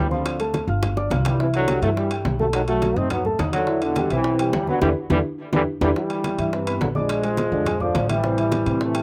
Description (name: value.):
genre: latin, salsa.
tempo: 211 BPM.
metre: 4/4.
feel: straight.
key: E minor.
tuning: A4 = 440 Hz.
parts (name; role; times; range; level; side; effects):
warm trombone section; melody; 0.0-9.0 s; B2 to C4; -26 LUFS; equal; slapback echo.
dark concert grand piano; accompaniment; 0.0-9.0 s; C3 to F6; -28 LUFS; equal; slapback echo.
upright bass; bass; 0.0-9.0 s; G1 to A2; -28 LUFS; equal; none.
congas; percussion; 0.1-9.0 s; none; -31 LUFS; equal; none.
bongos; percussion; 0.3-8.9 s; none; -33 LUFS; equal; slapback echo.
timbales; percussion; 0.3-9.0 s; none; -34 LUFS; equal; slapback echo.
room: little or no reverb.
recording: recorded outdoors, with no room sound.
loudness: -22 LUFS.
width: mono.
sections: 0.0-6.0 A section; 6.0-9.0 B section.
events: drum fill 0.8-1.4, 5.4-6.0; band accent 4.8-6.0.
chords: 0.3 Dm7; 0.8 G5; 1.4 Cmaj7; 2.5 B7; 3.7 Em7; 6.0 Cmaj9; 7.1 A#7; 8.2 Am7.